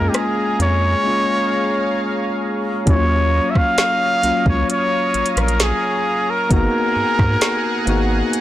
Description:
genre	contemporary R&B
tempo	66 BPM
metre	4/4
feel	straight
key	Eb minor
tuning	A4 = 442 Hz
part	breathy trumpet	melody	0.0-8.3 s	G4 to F5	-19 LUFS	equal	tape echo
part	tine electric piano	accompaniment	0.0-8.4 s	Gb3 to Gb4	-22 LUFS	left 2 dB	medium stereo tremolo
part	lush unison pad	sustained chords	0.0-8.4 s	Ab4 to Eb6	-25 LUFS	equal	chorus
part	rubbery square bass	bass	0.0-8.2 s	Ab1 to Ab2	-19 LUFS	equal	none
part	smooth R&B drum kit	drums	0.1-8.4 s	hi-hat, kick drum, rim click, snare drum	-19 LUFS	equal	soft clipping on snare
room	light reverb, digital ambience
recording	blown-out, overdriven recording, overdrive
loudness	-15 LUFS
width	side -13 dB against mid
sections	0.0-2.9 A section; 2.9-8.4 B section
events	drums muted 1.1-2.9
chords	0.0 Gbmaj9 (rootless); 1.1 Bbm7; 2.9 Ebm9; 6.5 Abm9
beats	0.14 1.05 1.96 | 2.87 3.78 4.69 5.60 | 6.51 7.42 8.33

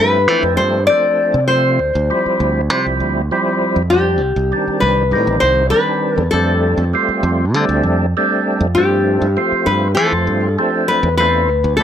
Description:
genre	electric jazz fusion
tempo	99 BPM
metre	4/4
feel	straight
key	G mixolydian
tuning	A4 = 441 Hz
part	nylon-string guitar	melody	0.0-11.8 s	G4 to D5	-16 LUFS	left 3 dB	plate reverb
part	percussive tonewheel organ	accompaniment	0.0-11.8 s	Eb3 to F4	-18 LUFS	right 2 dB	slow rotary speaker, overdrive, chorus vibrato
part	modern bright fingered electric bass	bass	0.0-11.8 s	A1 to E3	-17 LUFS	right 1 dB	none
room	moderate studio ambience, RT60 0.5 s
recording	none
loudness	-13 LUFS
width	side -9 dB against mid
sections	0.0-11.8 A section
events	none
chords	0.0 G9sus4; 1.8 Dm11; 4.2 Cmadd9; 6.3 F69; 8.8 G9sus4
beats	0.59 1.20 | 1.80 2.41 3.01 3.62 | 4.22 4.83 5.43 6.04 | 6.64 7.25 7.85 8.46 | 9.07 9.67 10.28 10.89 | 11.49

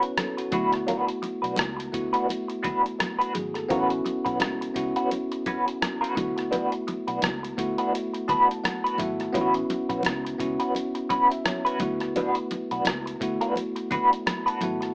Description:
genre	lush 1970s-style soul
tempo	85 BPM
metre	4/4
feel	swing 58% on 16ths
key	unclear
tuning	A4 = 440 Hz
part	bell-like tine electric piano	accompaniment	0.0-14.9 s	A3 to B5	-28 LUFS	equal	medium stereo tremolo
part	electric guitar through a small old amp	riff	0.0-14.8 s	C#4 to B4	-24 LUFS	equal	wah, tremolo
part	trip hop sampler-style drum kit	drums	0.0-14.9 s	hi-hat, kick drum, rim click	-30 LUFS	equal	none
part	congas	percussion	0.2-14.8 s	none	-35 LUFS	equal	none
part	vintage muted fingered electric bass	bass	0.5-14.9 s	G#1 to D2	-39 LUFS	equal	none
room	light reverb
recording	rough home demo mix, small speaker sound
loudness	-23 LUFS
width	side -40 dB against mid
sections	0.0-14.9 A section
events	tine electric piano fill 7.9-9.3, 13.9-14.9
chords	0.0 A69; 0.5 D6; 3.7 A69; 6.2 D6; 9.3 A69 (rootless); 11.8 D6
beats	0.17 | 0.88 1.58 2.29 3.00 | 3.70 4.41 5.11 5.82 | 6.52 7.22 7.93 8.63 | 9.34 10.04 10.75 11.45 | 12.15 12.86 13.56 14.26

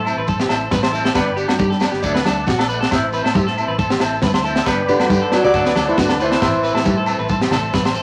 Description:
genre	highlife guitar band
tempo	137 BPM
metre	4/4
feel	straight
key	unclear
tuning	A4 = 440 Hz
part	fingerpicked plugged-in steel-string acoustic guitar	melody	0.0, 4.9-7.7 s	D4 to D5	-22 LUFS	equal	none
part	growling tenor saxophone	second line	0.0, 4.9-7.7 s	D3 to F#3	-27 LUFS	equal	none
part	clean electric guitar	accompaniment	0.0-8.0 s	E3 to E4	-28 LUFS	equal	none
part	tonewheel organ	sustained chords	0.0-8.0 s	C5 to B5	-29 LUFS	equal	slow rotary speaker, overdrive, chorus vibrato
part	electric guitar at the edge of break-up	arpeggios	0.0-8.0 s	F#4 to D5	-25 LUFS	equal	none
part	fingered electric bass	bass	0.0-8.0 s	G1 to A2	-29 LUFS	equal	none
part	agogo bells	percussion	0.1-8.0 s	none	-29 LUFS	equal	none
part	shekere	percussion	0.1-8.0 s	none	-33 LUFS	equal	none
part	tight funk drum kit	drums	0.3-7.9 s	kick drum, snare drum	-23 LUFS	equal	none
part	congas	percussion	0.3-8.0 s	none	-25 LUFS	equal	none
room	moderate studio reverb, RT60 0.8 s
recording	vinyl crackle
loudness	-17 LUFS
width	mono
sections	0.0-8.0 A section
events	none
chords	0.0 Am; 1.2 G; 2.0 D; 2.9 Am; 4.7 G; 5.5 D; 6.4 Am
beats	0.28 0.72 | 1.16 1.60 2.04 2.48 | 2.92 3.35 3.79 4.23 | 4.67 5.11 5.54 5.98 | 6.42 6.86 7.29 7.73

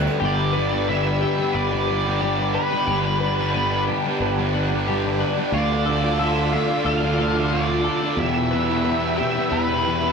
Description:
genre	rock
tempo	90 BPM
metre	4/4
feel	straight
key	G mixolydian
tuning	A4 = 440 Hz
part	phased analog pad	sustained chords	0.0-10.1 s	G3 to E6	-27 LUFS	equal	phaser, chorus
part	twelve-string electric guitar	arpeggios	0.0-10.1 s	F4 to B4	-27 LUFS	left 5 dB	none
part	crunchy overdriven guitar	riff	0.0-10.1 s	E2 to G4	-27 LUFS	right 3 dB	none
part	thick fuzz guitar	riff	0.0-10.1 s	E2 to D4	-27 LUFS	left 4 dB	distortion
part	fuzz fingered electric bass	bass	0.0-10.1 s	G1 to E2	-25 LUFS	right 1 dB	overdrive
part	octave-fuzz lead guitar	melody	0.2-10.1 s	B4 to F5	-26 LUFS	right 2 dB	distortion
room	wet small room reverb, RT60 0.5 s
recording	rough rehearsal-room recording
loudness	-19 LUFS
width	side -5 dB against mid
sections	0.2-10.1 A section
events	none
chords	0.0 Gadd9; 5.5 Dm; 8.2 Em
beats	| 0.22 0.89 1.55 2.21 | 2.88 3.54 4.21 4.87 | 5.53 6.20 6.86 7.53 | 8.19 8.85 9.52

